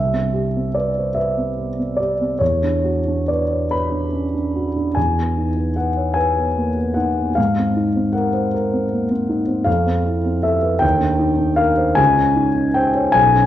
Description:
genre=classical, impressionist solo piano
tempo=44-54 BPM (dotted quarters)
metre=6/8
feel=rubato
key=unclear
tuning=A4 = 441 Hz
part: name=warm concert grand piano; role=solo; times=0.0-13.5 s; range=B1 to B5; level=-16 LUFS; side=equal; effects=none
room=moderate recital hall reverb, RT60 1.4 s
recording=worn, warbling old tape, cassette tape, warbly pitch drift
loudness=-16 LUFS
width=side -12 dB against mid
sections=0.0-13.5 A section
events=none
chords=0.0 Cmaj7; 2.4 Esus2; 5.0 Emaj7; 7.4 Abadd9; 9.7 Fmaj7; 10.8 Ebmaj7; 12.0 Dbsus2

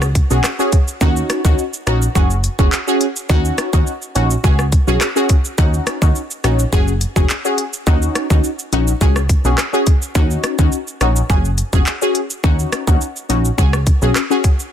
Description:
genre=dancehall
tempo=105 BPM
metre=4/4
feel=straight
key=Eb minor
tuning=A4 = 440 Hz
part: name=synth brass stab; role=accompaniment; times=0.0-14.5 s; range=Db4 to Ab4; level=-19 LUFS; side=left 1 dB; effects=chorus, phaser, sidechain pumping
part: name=plucky analog bass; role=bass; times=0.0-14.1 s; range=F1 to Eb2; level=-17 LUFS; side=equal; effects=none
part: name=island pop drum kit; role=drums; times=0.0-14.7 s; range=handclaps, hi-hat, kick drum, rim click, shaker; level=-16 LUFS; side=equal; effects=none
room=little or no reverb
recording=dense, heavily limited modern master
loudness=-14 LUFS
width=side -9 dB against mid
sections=0.0-14.7 A section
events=none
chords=0.0 Dbsus4; 1.0 Ebm7; 2.2 Gbsus2; 3.3 Ebm7; 4.4 Dbsus4; 5.6 Ebm7; 6.7 Gbsus2; 7.9 Ebm7; 9.0 Dbsus4; 10.2 Ebm7; 11.3 Gbsus2; 12.4 Ebm7; 13.6 Dbsus4

